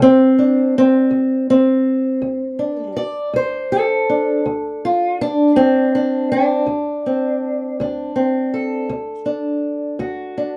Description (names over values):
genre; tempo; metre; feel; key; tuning
acoustic country blues, solo or duo; 54 BPM (dotted quarters); 12/8; straight; unclear; A4 = 440 Hz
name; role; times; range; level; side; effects
fingerpicked old ladder-braced acoustic guitar; solo; 0.0-10.6 s; D2 to D5; -18 LUFS; equal; none
room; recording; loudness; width
moderate studio ambience, RT60 0.5 s; dark, warm production; -18 LUFS; mono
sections
0.0-10.6 A section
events
none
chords
0.0 D7(no3)